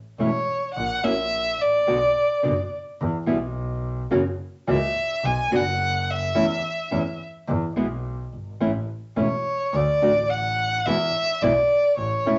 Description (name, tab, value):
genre	tango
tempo	107 BPM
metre	4/4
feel	rubato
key	A major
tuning	A4 = 440 Hz
part	warm violin	second line	0.2-12.4 s	C#5 to G#5	-24 LUFS	equal	none
part	nylon-string guitar	accompaniment	0.2-12.4 s	B2 to F#4	-26 LUFS	equal	none
part	clear double bass	bass	0.2-12.4 s	E1 to E2	-31 LUFS	equal	none
room	wet studio reverb, RT60 0.7 s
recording	nothing above 7.9 kHz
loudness	-23 LUFS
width	mono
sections	0.0-12.4 A section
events	violin solo 0.0-12.4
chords	0.0 A (rootless); 0.8 F#7/A#; 1.9 Bm; 3.0 E5; 4.1 F#7; 5.2 Bm; 6.4 A/E; 7.5 E5; 8.6 A; 9.7 D; 10.9 E